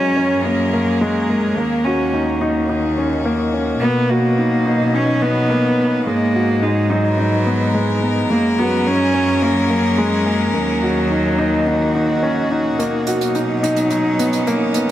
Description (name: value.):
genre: piano and strings electronica.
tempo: 107 BPM.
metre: 4/4.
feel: straight.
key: B major.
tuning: A4 = 440 Hz.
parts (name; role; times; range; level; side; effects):
warm cello; melody; 0.0-12.2 s; F#3 to C#4; -20 LUFS; equal; none.
warm string quartet; sustained chords; 0.0-14.9 s; B2 to B4; -24 LUFS; left 1 dB; none.
warm upright piano; riff; 0.0-14.9 s; G#3 to F#4; -19 LUFS; equal; digital delay.
warm chamber cello section; bass; 0.0-12.8 s; D#2 to B2; -22 LUFS; left 1 dB; none.
hi-hat; drums; 12.8-14.9 s; none; -29 LUFS; right 6 dB; low-pass filter on hats, low-pass filter on room.
room: moderate huge ambient reverb, RT60 7.6 s.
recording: none.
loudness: -15 LUFS.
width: side -12 dB against mid.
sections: 0.0-12.8 A section; 12.8-14.9 B section.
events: fade-in on string quartet 0.0-12.8; build-up 12.8-14.9.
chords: 0.0 F#add9; 1.6 D#m7; 3.8 Bmaj7; 6.1 G#m7; 8.3 F#add9; 10.5 D#m7; 12.8 Bmaj7.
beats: 0.45 1.01 | 1.58 2.14 2.70 3.26 | 3.82 4.38 4.94 5.50 | 6.06 6.62 7.18 7.74 | 8.30 8.87 9.43 9.99 | 10.55 11.11 11.67 12.23 | 12.79 13.35 13.91 14.47.